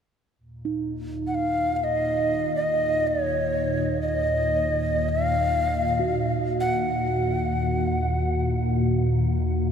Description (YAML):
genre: world meditative, free-time meditation music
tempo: free time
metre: none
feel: none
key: Eb minor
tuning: A4 = 439 Hz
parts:
  - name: glassy FM pad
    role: drone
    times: 0.6-9.7 s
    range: Eb2 to Bb2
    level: -26 LUFS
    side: equal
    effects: ensemble chorus, built-in reverb
  - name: quartz singing bowl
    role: texture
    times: 0.7-9.7 s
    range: Eb4 to Gb4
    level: -31 LUFS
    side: right 4 dB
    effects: none
  - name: breathy hollow Native American-style cedar flute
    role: melody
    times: 1.3-8.4 s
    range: Db5 to Gb5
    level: -25 LUFS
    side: left 1 dB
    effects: ping-pong delay
room: wet huge ambient reverb, RT60 7.8 s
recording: none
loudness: -22 LUFS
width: side -7 dB against mid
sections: 0.4-9.7 A section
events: none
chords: none